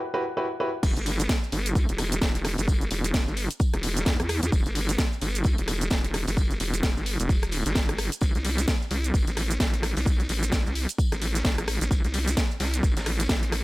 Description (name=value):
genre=bass house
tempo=130 BPM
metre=4/4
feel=swing 59% on 16ths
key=E minor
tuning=A4 = 440 Hz
part: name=dark grand piano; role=stabs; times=0.1-0.7 s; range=E4 to B4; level=-28 LUFS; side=equal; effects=sidechain pumping, dub echo
part: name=vowel-sweep wobble bass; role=bass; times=0.8-13.6 s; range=E1 to E2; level=-27 LUFS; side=equal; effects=chorus, sidechain pumping
part: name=electronic kick drum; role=drums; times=0.8-13.4 s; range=none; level=-24 LUFS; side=equal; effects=none
part: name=house drum kit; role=drums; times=0.8-13.6 s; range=crash cymbal, hi-hat, rim click, shaker, snare drum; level=-30 LUFS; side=equal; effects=none
part: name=raw garage drum kit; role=drums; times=0.8-13.6 s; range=hi-hat, snare drum, tambourine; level=-39 LUFS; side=left 1 dB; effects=sidechain pumping on hats, high-pass filter on hats, high-pass filter on snare, sidechain pumping on perc, high-pass filter on perc, high-pass filter on room
room=studio reverb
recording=none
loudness=-23 LUFS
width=side -20 dB against mid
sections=0.8-13.6 A section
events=break 0.0-0.8; drop 0.8-13.6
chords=0.0 Emadd9; 0.8 Em; 8.2 Am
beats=0.37 | 0.83 1.29 1.75 2.22 | 2.68 3.14 3.60 4.06 | 4.52 4.99 5.45 5.91 | 6.37 6.83 7.29 7.75 | 8.22 8.68 9.14 9.60 | 10.06 10.52 10.98 11.45 | 11.91 12.37 12.83 13.29